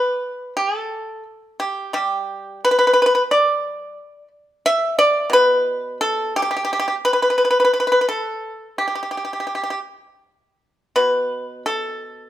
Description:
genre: chinese traditional.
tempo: 82-91 BPM.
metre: 4/4.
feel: rubato.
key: unclear.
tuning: A4 = 440 Hz.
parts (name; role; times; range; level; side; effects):
pipa; solo; 0.0-12.3 s; B2 to E5; -17 LUFS; equal; none.
room: moderate large studio reverb, RT60 1.2 s.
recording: band playing live in one room.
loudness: -17 LUFS.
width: side -12 dB against mid.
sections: 0.0-12.3 A section.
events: none.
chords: none.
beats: 0.57 1.27 | 1.96 2.65 3.32 3.99 | 4.65 5.32 6.00 6.70 | 7.39 8.09 8.80 9.52 | 10.25 10.97 11.67.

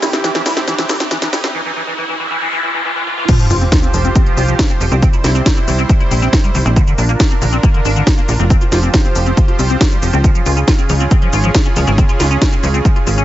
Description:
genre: uplifting trance.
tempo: 138 BPM.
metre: 4/4.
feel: straight.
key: F harmonic minor.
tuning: A4 = 439 Hz.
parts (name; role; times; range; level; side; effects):
filtered supersaw swell; sustained chords; 0.0-13.2 s; C3 to C5; -21 LUFS; right 2 dB; vintage 12-bit sampler grit, sidechain pumping.
liquid acid bass; arpeggios; 0.0-13.2 s; D3 to F4; -21 LUFS; left 1 dB; phaser, lush chorus, vintage 12-bit sampler grit, sidechain pumping, dub echo.
tight sequencer bass; bass; 0.0-13.2 s; F1 to Db2; -15 LUFS; equal; sidechain pumping, high-pass filter.
techno drum kit; drums; 0.0-13.2 s; crash cymbal, hi-hat, shaker, snare drum; -20 LUFS; equal; overdrive.
riser, noise sweep and sub drop; sound effects; 0.0-5.0 s; none; -20 LUFS; equal; none.
electronic kick drum; drums; 3.3-12.9 s; none; -12 LUFS; equal; overdrive.
room: digital ambience.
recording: high-pass filter, nothing above 7.9 kHz.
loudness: -11 LUFS.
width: side -14 dB against mid.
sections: 0.0-3.3 A section; 3.3-13.2 B section.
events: build-up 0.0-3.3; drum fill 0.0-1.5; riser 0.0-3.3; filter sweep on acid bass 0.0-3.3; break 1.5-3.3; noise sweep 1.5-3.3; drop 3.3-13.2; impact 3.3-5.0.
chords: 0.0 C; 3.3 Fsus2; 5.0 C; 6.8 Bb; 8.5 Fsus2; 10.2 Db.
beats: 0.24 0.68 1.11 | 1.55 1.98 2.42 2.85 | 3.29 3.72 4.16 4.59 | 5.03 5.46 5.89 6.33 | 6.76 7.20 7.63 8.07 | 8.50 8.94 9.37 9.81 | 10.24 10.68 11.11 11.55 | 11.98 12.42 12.85.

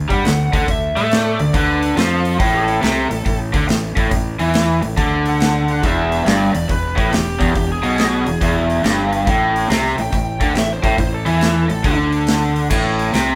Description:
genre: blues rock power trio and southern rock.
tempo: 140 BPM.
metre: 4/4.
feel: swing 65% on 8ths.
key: unclear.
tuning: A4 = 442 Hz.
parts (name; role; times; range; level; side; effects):
raw garage guitar; riff; 0.0-13.4 s; E2 to A3; -20 LUFS; equal; overdrive.
fuzz fingered electric bass; bass; 0.0-13.4 s; E1 to A2; -25 LUFS; equal; overdrive.
biting lead guitar; second line; 0.1-12.0 s; G4 to G5; -27 LUFS; equal; overdrive.
big rock drum kit; drums; 0.1-13.3 s; crash cymbal, hi-hat, kick drum, snare drum; -23 LUFS; equal; none.
room: moderate stone room reverb, RT60 1.3 s.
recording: band playing live in one room.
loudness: -17 LUFS.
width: mono.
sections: 0.0-12.7 A section.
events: lead electric guitar solo 0.0-12.7.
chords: 0.0 D; 2.4 A5; 5.8 E; 9.3 A5; 12.7 Am.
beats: 0.25 | 0.68 1.11 1.54 1.97 | 2.40 2.83 3.26 3.69 | 4.12 4.55 4.97 5.41 | 5.83 6.26 6.69 7.12 | 7.55 7.98 8.41 8.84 | 9.27 9.70 10.13 10.56 | 10.99 11.42 11.85 12.28 | 12.71 13.14.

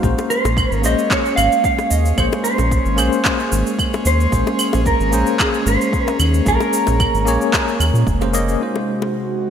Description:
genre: sunset chillout.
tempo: 112 BPM.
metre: 4/4.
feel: swing 54% on 16ths.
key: Bb minor.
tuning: A4 = 440 Hz.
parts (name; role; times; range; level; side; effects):
bell-like tine electric piano; accompaniment; 0.0-9.5 s; Ab3 to Eb5; -22 LUFS; left 2 dB; medium stereo tremolo, auto-pan, ping-pong delay.
airy breathy pad; sustained chords; 0.0-9.5 s; C3 to Gb4; -25 LUFS; equal; chorus.
round analog bass; bass; 0.0-8.6 s; F1 to Bb2; -18 LUFS; equal; none.
electronic cabasa, claves and handclaps; drums; 0.0-9.3 s; none; -22 LUFS; right 1 dB; overdrive, low-pass filter on perc, low-pass filter on snare, low-pass filter on room, gated reverb.
electronic kick drum; drums; 0.0-8.2 s; none; -22 LUFS; equal; overdrive.
bongos; percussion; 0.2-9.1 s; none; -27 LUFS; left 6 dB; none.
mellow electric guitar; melody; 0.3-8.0 s; Ab4 to F5; -20 LUFS; right 1 dB; wide subtle chorus.
room: moderate lush hall reverb, RT60 2.2 s.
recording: bright 1980s-style digital production, faint mains hum.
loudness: -14 LUFS.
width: side -8 dB against mid.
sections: 0.0-8.6 A section.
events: none.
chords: 0.0 Bbm9; 8.6 Ab7.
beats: | 0.04 0.57 1.11 1.64 | 2.18 2.71 3.25 3.79 | 4.32 4.86 5.39 5.93 | 6.46 7.00 7.54 8.07 | 8.61 9.14.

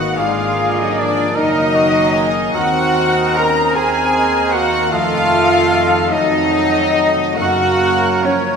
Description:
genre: classical, slow romantic movement for symphony orchestra.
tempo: 50 BPM (dotted quarters).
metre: 6/8.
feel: uneven beats, rubato.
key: unclear.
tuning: A4 = 440 Hz.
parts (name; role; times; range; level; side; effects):
warm symphonic violin section; melody; 0.0-8.6 s; Db5 to Bb5; -23 LUFS; left 3 dB; none.
clear clarinet; second line; 0.0-8.6 s; Db5 to Bb5; -23 LUFS; left 3 dB; none.
clear studio violin section; second line; 0.0-8.6 s; Db5 to Bb5; -25 LUFS; left 3 dB; none.
silver concert flute; second line; 0.0-8.6 s; Db5 to Bb5; -22 LUFS; left 1 dB; none.
rich symphonic viola section; accompaniment; 0.0-8.6 s; A4 to Eb5; -25 LUFS; right 1 dB; none.
mellow French horn section; sustained chords; 0.0-8.6 s; F3 to Db4; -23 LUFS; left 2 dB; none.
concert harp; arpeggios; 0.0-8.6 s; F2 to C6; -26 LUFS; left 5 dB; none.
rich studio cello section; bass; 0.0-8.6 s; Db4 to Bb4; -18 LUFS; right 2 dB; none.
warm studio double bass section; bass; 0.0-8.5 s; Gb1 to Gb2; -26 LUFS; right 4 dB; none.
warm cor anglais; second line; 0.2-8.6 s; Gb4 to Bb4; -22 LUFS; right 4 dB; none.
warm trombone section; sustained chords; 0.2-8.6 s; Db3 to C4; -27 LUFS; right 4 dB; none.
room: wet scoring stage reverb, RT60 1.6 s.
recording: minimal, uncompressed stereo recording.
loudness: -12 LUFS.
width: side -6 dB against mid.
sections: 0.0-8.6 A section.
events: none.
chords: 0.2 Bb7/Ab; 1.4 Ebm/Gb; 2.6 Cdim/Eb; 4.9 F7b9; 7.4 Gb.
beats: | 0.18 1.37 | 2.56 3.75 | 4.92 6.12 | 7.37.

